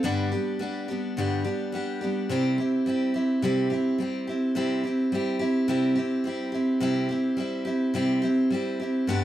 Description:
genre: country.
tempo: 106 BPM.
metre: 4/4.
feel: straight.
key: C major.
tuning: A4 = 440 Hz.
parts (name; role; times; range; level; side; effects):
picked steel-string acoustic guitar; solo; 0.0-9.2 s; G2 to G4; -24 LUFS; equal; none.
room: wet studio reverb, RT60 0.8 s.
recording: dark, warm production.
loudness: -24 LUFS.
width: side -12 dB against mid.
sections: 0.0-9.2 A section.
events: none.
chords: 0.0 G; 2.3 C.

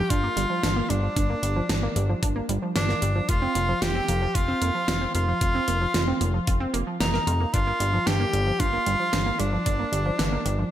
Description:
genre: synthwave.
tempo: 113 BPM.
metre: 4/4.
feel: straight.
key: G minor.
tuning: A4 = 441 Hz.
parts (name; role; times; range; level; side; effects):
bright tenor saxophone; melody; 0.0-10.7 s; D4 to G4; -27 LUFS; equal; ping-pong delay.
analog pluck; arpeggios; 0.0-10.7 s; F3 to Bb4; -30 LUFS; right 3 dB; chorus, ping-pong delay.
fat analog bass; bass; 0.0-10.6 s; F1 to G1; -26 LUFS; equal; sidechain pumping.
electronic kick drum; drums; 0.1-9.8 s; none; -25 LUFS; equal; none.
pop drum kit; drums; 0.1-10.6 s; hi-hat, snare drum; -29 LUFS; equal; gated reverb.
room: moderate recital hall reverb, RT60 1.5 s.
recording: none.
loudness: -22 LUFS.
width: side -11 dB against mid.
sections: 0.0-10.7 A section.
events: none.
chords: 0.0 Gm7; 3.3 Fsus4; 7.5 Gm7.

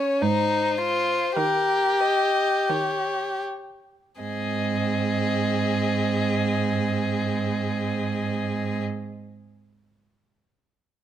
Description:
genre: classical, slow romantic movement for string quartet.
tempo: 37-55 BPM.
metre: 3/4.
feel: rubato.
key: Ab major.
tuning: A4 = 440 Hz.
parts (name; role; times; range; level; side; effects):
warm violin; melody; 0.0-8.8 s; Bb4 to Eb5; -30 LUFS; left 5 dB; none.
rich violin; second line; 0.0-8.8 s; Db4 to Ab4; -25 LUFS; left 1 dB; none.
rich cello; bass; 0.2-8.8 s; Ab2; -27 LUFS; right 5 dB; none.
rich viola; accompaniment; 1.4-8.8 s; Eb3 to C4; -30 LUFS; right 4 dB; none.
room: light reverb.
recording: close, detailed microphones.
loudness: -22 LUFS.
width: side -10 dB against mid.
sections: 0.0-4.2 A section; 4.2-8.3 B section.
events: slowing down 0.0-4.2.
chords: 0.2 Eb/Ab; 4.2 Ab.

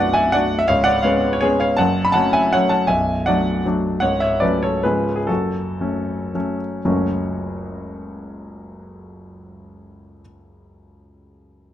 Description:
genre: classical, romantic triple-time dance for piano with dotted rhythms.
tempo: 109-173 BPM.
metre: 3/4.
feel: rubato.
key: F# minor.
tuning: A4 = 440 Hz.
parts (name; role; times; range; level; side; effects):
clear baby grand piano; solo; 0.0-11.7 s; B0 to B5; -18 LUFS; equal; none.
room: moderate large studio reverb, RT60 1.1 s.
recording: dark, warm production.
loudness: -17 LUFS.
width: side -11 dB against mid.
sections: 0.0-6.8 A section; 6.8-9.8 B section.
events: slowing down 3.5-6.8.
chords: 0.0 Bm7; 0.7 C#5; 1.8 F#m; 2.9 Bm7; 4.0 F#m/C#; 4.8 C#7; 5.3 F#m.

